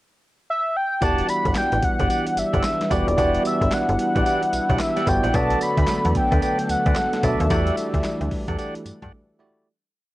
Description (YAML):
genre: R&B, new jack swing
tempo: 111 BPM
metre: 4/4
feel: swing 62% on 16ths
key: E minor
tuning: A4 = 438 Hz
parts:
  - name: octave-doubled lead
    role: melody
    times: 0.5-8.3 s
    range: D5 to B5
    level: -23 LUFS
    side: equal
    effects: chorus, cassette tape
  - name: bell-like tine electric piano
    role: accompaniment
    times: 1.0-9.7 s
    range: A3 to D5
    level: -27 LUFS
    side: right 1 dB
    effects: medium stereo tremolo
  - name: brassy analog pad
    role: sustained chords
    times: 1.0-9.6 s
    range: D3 to F#5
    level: -28 LUFS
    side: equal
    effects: chorus
  - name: tonewheel organ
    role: stabs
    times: 1.0-9.1 s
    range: G4 to F#5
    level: -29 LUFS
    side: right 1 dB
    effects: overdrive, stopped rotary speaker
  - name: slap-like FM bass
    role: bass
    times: 1.0-9.1 s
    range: D#1 to G2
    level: -23 LUFS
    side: equal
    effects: none
  - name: boom bap sampler-style drum kit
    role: drums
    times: 1.0-9.1 s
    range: handclaps, hi-hat, kick drum, snare drum, tambourine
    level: -26 LUFS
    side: equal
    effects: cassette tape
room: little or no reverb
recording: home recording on cassette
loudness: -19 LUFS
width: side -17 dB against mid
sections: 0.0-1.0 pickup bar; 1.0-9.7 chorus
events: fade-out 7.5-9.7; break 9.1-9.7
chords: 0.0 N.C.; 1.0 Em9; 5.3 Bm7; 7.5 Em11